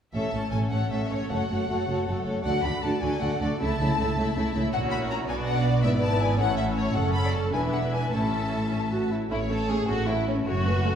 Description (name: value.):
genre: quick classical-period movement for string orchestra.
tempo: 100-110 BPM (dotted quarters).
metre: 6/8.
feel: straight.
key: A major.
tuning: A4 = 439 Hz.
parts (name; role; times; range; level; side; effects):
rich studio violin section; melody; 0.1-11.0 s; A4 to B5; -31 LUFS; left 4 dB; none.
rich studio violin section; second line; 0.1-11.0 s; C#4 to E5; -31 LUFS; left 1 dB; none.
warm studio viola section; accompaniment; 0.1-10.9 s; A3 to A4; -30 LUFS; right 1 dB; none.
clear symphonic double bass section; bass; 0.1-11.0 s; E1 to D2; -31 LUFS; right 2 dB; none.
rich symphonic cello section; bass; 0.1-11.0 s; E2 to D3; -29 LUFS; right 1 dB; none.
room: wet recital hall reverb, RT60 1.5 s.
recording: heard from further back in the room.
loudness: -23 LUFS.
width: side -8 dB against mid.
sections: 0.1-9.3 A section; 9.3-11.0 A section.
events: none.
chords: 0.1 A; 1.3 F#m; 2.4 D; 3.6 A/C#; 4.7 F#7/A#; 5.3 Bm; 5.8 E7/G#; 6.4 A; 7.0 F#m; 7.5 E5; 8.1 A.